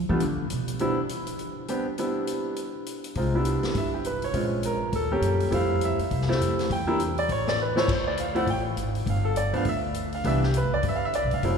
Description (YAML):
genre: jazz piano trio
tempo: 203 BPM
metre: 4/4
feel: swing 61% on 8ths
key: C major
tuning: A4 = 440 Hz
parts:
  - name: upright bass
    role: bass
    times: 0.0-1.0, 3.2-11.6 s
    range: F1 to E3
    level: -28 LUFS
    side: equal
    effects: none
  - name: bright upright piano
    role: melody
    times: 0.1-11.6 s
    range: E3 to G5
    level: -26 LUFS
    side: right 1 dB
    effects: none
  - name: vintage drum kit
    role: drums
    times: 0.2-11.5 s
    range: crash cymbal, hi-hat, kick drum, snare drum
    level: -34 LUFS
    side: left 3 dB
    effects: none
room: wet cathedral reverb, RT60 4.0 s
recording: recorded in a church or concert hall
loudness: -24 LUFS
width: side -6 dB against mid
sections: 0.0-3.2 A section; 3.2-11.6 B section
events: upright bass solo 0.0-3.2; drum fill 7.6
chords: 0.0 G (rootless); 0.8 Cmaj9; 2.6 N.C.; 3.2 Cmaj9; 4.3 Bbm7; 4.9 Eb7; 5.5 Fmaj9; 6.7 Em7; 7.3 A5; 7.9 Dm7; 9.1 G7(no3); 10.2 Cmaj9